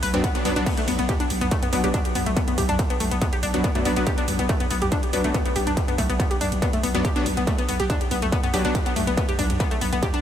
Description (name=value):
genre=driving peak-time techno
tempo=141 BPM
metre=4/4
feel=straight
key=B minor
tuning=A4 = 440 Hz
part: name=analog pluck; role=riff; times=0.0-10.2 s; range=A3 to B4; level=-26 LUFS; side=left 2 dB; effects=chorus, cassette tape, sidechain pumping, ping-pong delay
part: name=growling 808-style bass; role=bass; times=0.0-10.0 s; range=B1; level=-28 LUFS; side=equal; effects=overdrive, sidechain pumping, low-pass filter
part: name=techno drum kit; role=drums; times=0.0-10.2 s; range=crash cymbal, hi-hat, ride cymbal, toms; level=-31 LUFS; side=right 2 dB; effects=overdrive
part: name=supersaw stab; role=stabs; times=0.1-8.7 s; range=F#3 to D4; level=-28 LUFS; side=left 1 dB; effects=sidechain pumping, analog delay
part: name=electronic kick drum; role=drums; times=0.2-10.1 s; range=none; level=-24 LUFS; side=equal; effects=distortion, overdrive
room=moderate huge ambient reverb, RT60 6.5 s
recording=dreamy mix soaked in reverb, faint mains hum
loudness=-20 LUFS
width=side -10 dB against mid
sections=0.0-10.2 A section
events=none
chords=0.0 Bm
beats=0.24 | 0.66 1.09 1.51 1.94 | 2.37 2.79 3.22 3.64 | 4.07 4.49 4.92 5.34 | 5.77 6.20 6.62 7.05 | 7.47 7.90 8.32 8.75 | 9.18 9.60 10.03